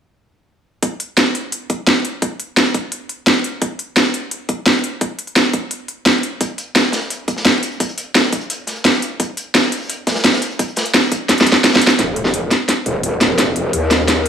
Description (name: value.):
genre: dark technical drum and bass.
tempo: 172 BPM.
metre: 4/4.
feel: straight.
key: unclear.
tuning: A4 = 440 Hz.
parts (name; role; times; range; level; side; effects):
drum and bass drum kit; drums; 0.8-14.3 s; hi-hat, snare drum; -14 LUFS; equal; studio reverb.
electronic kick drum; drums; 0.8-11.5 s; none; -20 LUFS; equal; high-pass filter on kick, studio reverb.
crunchy breakbeat drum kit; drums; 6.4-11.9 s; hi-hat, snare drum; -24 LUFS; equal; high-pass filter on hats, studio reverb, high-pass filter on snare, high-pass filter on room.
growl bass; bass; 12.0-14.3 s; Eb1 to Eb2; -18 LUFS; equal; chorus, overdrive.
room: moderate digital room reverb, RT60 1.1 s, small room ambience.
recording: high-pass filter.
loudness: -14 LUFS.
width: side -8 dB against mid.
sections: 0.8-12.0 A section; 12.0-14.3 B section.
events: drum fill 11.3-12.0, 12.0-14.3; build-up 12.0-14.3.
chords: none.